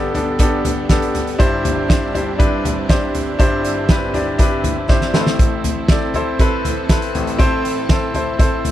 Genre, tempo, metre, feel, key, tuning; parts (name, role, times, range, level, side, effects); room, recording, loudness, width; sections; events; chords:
piano-driven pop; 120 BPM; 4/4; straight; A4 = 441 Hz
bright concert grand piano; accompaniment; 0.0-8.7 s; G1 to D5; -19 LUFS; left 2 dB
warm studio string section; sustained chords; 0.0-8.7 s; G3 to D5; -26 LUFS; right 6 dB
loose indie drum kit; drums; 0.1-8.7 s; hi-hat, kick drum, snare drum, toms; -17 LUFS; equal
little or no reverb; -14 LUFS; side -12 dB against mid
0.0-8.7 A section
drum fill 4.9-5.4
0.0 Gadd9; 1.4 Cadd9/G; 5.1 Am